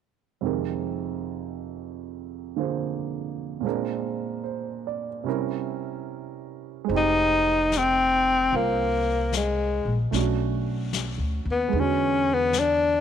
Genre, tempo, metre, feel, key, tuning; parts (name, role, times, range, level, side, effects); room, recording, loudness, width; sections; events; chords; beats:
jazz ballad; 74 BPM; 4/4; swing 66% on 8ths; F dorian; A4 = 440 Hz
warm grand piano; accompaniment; 0.4-13.0 s; F2 to D5; -29 LUFS; right 11 dB
upright bass; bass; 6.9-13.0 s; F1 to E2; -28 LUFS; left 1 dB
vintage brush drum kit; drums; 6.9-13.0 s; brushed snare drum, hi-hat, snare drum; -34 LUFS; left 10 dB
breathy tenor saxophone; melody; 7.0-13.0 s; Ab3 to Eb4; -21 LUFS; left 3 dB
light reverb, studio reverb; 1960s-style stereo with parts hard left and right; -23 LUFS; side -8 dB against mid
0.4-6.9 A section; 6.9-13.0 B section
0.4 Fm11; 3.6 Bb9; 5.3 C7b9; 6.9 Fm9; 10.1 Bm7; 11.7 E9
| 0.41 1.23 2.04 2.85 | 3.65 4.46 5.27 6.08 | 6.89 7.71 8.52 9.32 | 10.13 10.93 11.73 12.54